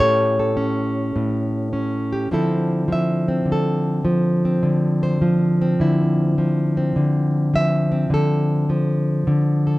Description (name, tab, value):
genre	solo jazz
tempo	104 BPM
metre	4/4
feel	swing 67% on 8ths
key	D minor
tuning	A4 = 440 Hz
part	flamenco guitar	solo	0.0-9.8 s	A2 to E5	-17 LUFS	equal	none
room	moderate club reverb, RT60 0.6 s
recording	dark, warm production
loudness	-17 LUFS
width	side -18 dB against mid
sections	0.0-2.3 A section; 2.3-9.8 B section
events	nylon-string guitar solo 2.3-9.8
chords	0.0 A7; 2.3 Dm9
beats	0.57 1.15 1.73 | 2.31 2.89 3.47 4.05 | 4.63 5.21 5.79 6.37 | 6.95 7.53 8.11 8.69 | 9.27